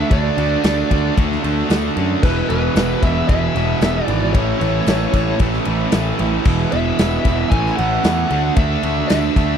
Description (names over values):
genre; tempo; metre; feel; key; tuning
classic rock; 113 BPM; 4/4; straight; E mixolydian; A4 = 440 Hz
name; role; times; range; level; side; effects
bluesy overdriven lead guitar; melody; 0.0-9.6 s; B4 to G#5; -22 LUFS; equal; distortion, slapback echo
distorted electric guitar; riff; 0.0-9.6 s; E2 to F#4; -24 LUFS; left 17 dB; overdrive
overdriven semi-hollow guitar; riff; 0.0-9.6 s; E2 to D4; -22 LUFS; right 16 dB; none
fuzz picked electric bass; bass; 0.0-9.5 s; E1 to F#2; -20 LUFS; left 1 dB; overdrive
big rock drum kit; drums; 0.1-9.5 s; crash cymbal, kick drum, ride cymbal, snare drum; -20 LUFS; left 1 dB; none
tambourine; percussion; 0.6-9.2 s; none; -42 LUFS; left 14 dB; none
room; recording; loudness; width
studio reverb; dry, close 1970s-style studio recording; -15 LUFS; side -8 dB against mid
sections
0.0-9.6 A section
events
none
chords
0.0 D; 2.2 E; 4.3 A; 6.5 E; 7.5 A; 8.3 Dadd9